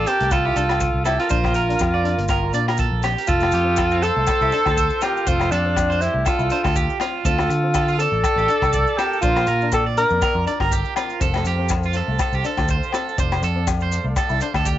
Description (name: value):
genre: highlife guitar band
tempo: 121 BPM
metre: 4/4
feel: swing 55% on 16ths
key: F major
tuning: A4 = 440 Hz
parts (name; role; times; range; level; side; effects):
- warm alto saxophone; melody; 0.0-10.4 s; D4 to Bb4; -21 LUFS; right 1 dB; cassette tape, analog delay
- clear trumpet; second line; 0.0-10.4 s; F4 to D5; -32 LUFS; left 8 dB; none
- electric guitar at the edge of break-up; arpeggios; 0.0-14.8 s; C4 to D5; -25 LUFS; right 8 dB; tremolo, analog delay
- fingered electric bass; bass; 0.0-14.8 s; F1 to D3; -23 LUFS; equal; none
- electric guitar through a small old amp; accompaniment; 0.1-14.6 s; A3 to F4; -33 LUFS; left 9 dB; spring reverb
- vintage drum kit; drums; 0.1-14.8 s; hi-hat, kick drum, rim click; -26 LUFS; equal; cassette tape
- maracas; percussion; 0.1-14.8 s; none; -35 LUFS; left 9 dB; none
- agogo bells; percussion; 0.3-14.7 s; none; -29 LUFS; left 12 dB; none
- combo organ; sustained chords; 11.2-14.8 s; A4 to F5; -33 LUFS; left 1 dB; none
room: light reverb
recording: home recording on cassette, nothing above 7.9 kHz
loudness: -17 LUFS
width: side -12 dB against mid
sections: 0.0-3.3 A section; 3.3-14.8 B section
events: none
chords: 0.0 Dm; 1.3 Bb; 3.3 F; 7.2 Dm; 9.2 Bb; 11.2 F